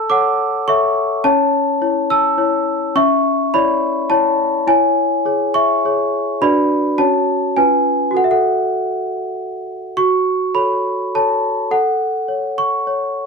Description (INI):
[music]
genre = classical, lullaby for celesta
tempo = 104 BPM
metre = 3/4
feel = straight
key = F# minor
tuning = A4 = 441 Hz
[part]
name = large celesta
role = solo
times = 0.0-13.3 s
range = C#4 to E6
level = -14 LUFS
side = equal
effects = none
[sound]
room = moderate studio reverb, RT60 0.7 s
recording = none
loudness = -14 LUFS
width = side -4 dB against mid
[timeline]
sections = 0.0-10.0 A section; 10.0-13.3 A section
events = none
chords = 0.0 A; 1.3 A/C#; 3.0 C#m; 4.7 C#m/E; 6.4 Bm/D; 7.0 F#m/C#; 7.6 C#7; 8.2 F#m; 11.7 F#m/A